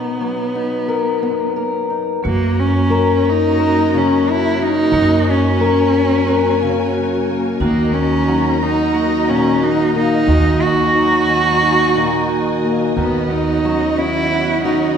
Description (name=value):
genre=acoustic folk-pop ballad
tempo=89 BPM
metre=4/4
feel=straight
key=unclear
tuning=A4 = 440 Hz
part: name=dark cello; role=melody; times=0.0-15.0 s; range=A#3 to F#4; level=-17 LUFS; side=right 1 dB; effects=none
part: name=fingerpicked acoustic archtop guitar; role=accompaniment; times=0.0-15.0 s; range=F#2 to A#4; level=-20 LUFS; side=left 4 dB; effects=none
part: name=warm studio string section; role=sustained chords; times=2.2-15.0 s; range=F#4 to A#5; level=-26 LUFS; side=left 1 dB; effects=none
part: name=vibraphone with hard mallets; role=arpeggios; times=2.2-15.0 s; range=A#3 to F#4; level=-20 LUFS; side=right 2 dB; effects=none
part: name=upright bass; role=bass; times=2.2-15.0 s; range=D#2 to F#2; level=-22 LUFS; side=right 1 dB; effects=none
room=wet concert hall reverb, RT60 1.9 s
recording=recorded in a church or concert hall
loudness=-13 LUFS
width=side -7 dB against mid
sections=0.0-2.2 A section; 2.2-15.0 B section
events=none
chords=0.0 Bmaj7; 2.2 F#; 7.6 D#m; 13.0 Badd9/D#